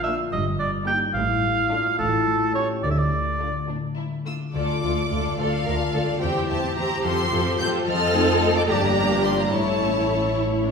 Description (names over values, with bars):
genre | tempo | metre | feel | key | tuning
cinematic | 72 BPM (dotted quarters) | 6/8 | straight | D minor | A4 = 440 Hz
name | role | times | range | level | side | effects
clear studio violin section | melody | 0.0-10.4 s | F4 to G6 | -30 LUFS | equal | none
clear cor anglais | second line | 0.0-3.7 s | A4 to G5 | -23 LUFS | right 3 dB | none
rich studio violin section | second line | 0.0-10.7 s | C#4 to Eb5 | -28 LUFS | left 4 dB | none
concert harp | arpeggios | 0.0-10.7 s | G2 to A4 | -27 LUFS | left 4 dB | none
warm studio cello section | bass | 0.0-10.7 s | G2 to Bb4 | -28 LUFS | right 2 dB | none
rich studio viola section | accompaniment | 0.1-10.7 s | A3 to G4 | -29 LUFS | right 1 dB | none
clear studio double bass section | bass | 0.3-10.7 s | G1 to F2 | -29 LUFS | right 3 dB | none
mellow French horn section | sustained chords | 4.8-10.7 s | G3 to F4 | -31 LUFS | left 2 dB | none
room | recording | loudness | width
wet recital hall reverb, RT60 1.4 s | recorded in a church or concert hall | -20 LUFS | side -5 dB against mid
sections
0.0-4.5 A section; 4.5-10.7 A section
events
none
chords
0.3 Eb/G; 1.2 Dm/A; 2.0 A7; 2.8 Dm; 6.2 C/E; 7.0 F; 7.9 F7; 8.7 Gm; 9.5 A